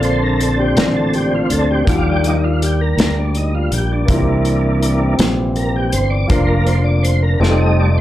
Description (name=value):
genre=slow gospel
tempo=54 BPM (dotted quarters)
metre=6/8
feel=straight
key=Bb major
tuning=A4 = 439 Hz
part: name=warm grand piano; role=accompaniment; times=0.0-8.0 s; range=Bb2 to Bb4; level=-24 LUFS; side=left 4 dB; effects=slapback echo
part: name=mellow French horn section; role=sustained chords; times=0.0-8.0 s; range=D3 to D5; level=-25 LUFS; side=left 1 dB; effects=none
part: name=tonewheel organ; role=sustained chords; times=0.0-8.0 s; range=D3 to Eb5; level=-18 LUFS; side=right 1 dB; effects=fast rotary speaker, chorus vibrato
part: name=fingered electric bass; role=bass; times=0.0-8.0 s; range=F1 to Eb2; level=-17 LUFS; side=equal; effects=none
part: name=natural country drum kit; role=drums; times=0.0-7.6 s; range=hi-hat, kick drum, snare drum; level=-18 LUFS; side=equal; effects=none
room=light reverb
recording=live gig heard through the venue's PA, club reverb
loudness=-13 LUFS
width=side -13 dB against mid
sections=0.0-8.0 A section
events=tonewheel organ solo 0.0-8.0; drum fill 7.4-8.0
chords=0.0 Bbmaj7; 1.9 Ebmaj7; 4.1 C7; 6.3 Bb/F; 7.4 F7